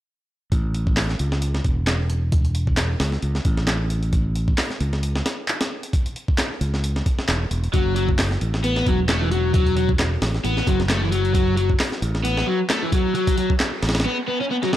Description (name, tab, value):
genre	breakbeat, breaks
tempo	133 BPM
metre	4/4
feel	swing 55% on 16ths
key	unclear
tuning	A4 = 441 Hz
part	modern bright fingered electric bass	bass	0.5-14.1 s	E1 to C#2	-22 LUFS	equal	tube saturation, low-pass filter
part	breakbeat sampler-style drum kit	drums	0.5-14.8 s	hi-hat, kick drum, snare drum	-23 LUFS	equal	none
part	electronic handclaps	drums	1.0-13.7 s	none	-27 LUFS	equal	none
part	crunchy overdriven guitar	riff	7.7-14.8 s	E3 to C#4	-22 LUFS	left 1 dB	tube saturation, analog delay
part	noise sweep	sound effects	13.4-14.8 s	none	-36 LUFS	right 1 dB	none
room	digital ambience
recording	dry, gritty hardware recording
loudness	-19 LUFS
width	side -13 dB against mid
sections	0.5-14.8 A section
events	noise sweep 13.4-14.8; break 14.1-14.8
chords	0.5 A; 7.7 F#m7